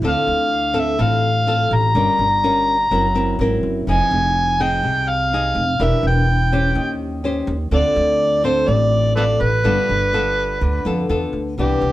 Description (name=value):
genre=bossa nova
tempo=125 BPM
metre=4/4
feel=straight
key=unclear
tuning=A4 = 440 Hz
part: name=nylon-string guitar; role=accompaniment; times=0.0-11.9 s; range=A2 to C5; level=-21 LUFS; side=left 2 dB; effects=none
part: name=upright bass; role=bass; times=0.0-11.9 s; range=E1 to F2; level=-22 LUFS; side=equal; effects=none
part: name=overdriven harmonica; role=melody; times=0.1-11.9 s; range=G4 to Bb5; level=-18 LUFS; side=equal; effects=none
room=moderate studio reverb, RT60 0.7 s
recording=band playing live in one room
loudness=-16 LUFS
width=side -15 dB against mid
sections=0.0-11.6 A section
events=none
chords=0.0 Dm7; 1.9 Gm7b5; 2.9 F#7#11; 3.9 Fm7; 5.8 Em7b5; 6.8 Eb6; 7.7 Dm7; 9.6 G9